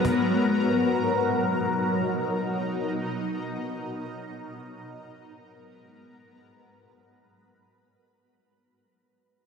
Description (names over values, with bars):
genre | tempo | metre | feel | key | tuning
hip hop | free time | none | none | unclear | A4 = 440 Hz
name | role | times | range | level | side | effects
shimmering ambient pad | sustained chords | 0.0-8.2 s | G#2 to B4 | -25 LUFS | left 1 dB | chorus, built-in reverb, phaser
room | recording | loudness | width
light reverb, small room ambience | none | -24 LUFS | side -6 dB against mid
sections
0.0-8.2 A section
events
fade-out 0.0-8.2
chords
0.0 G#m9; 0.7 Bmaj7; 4.5 G#m9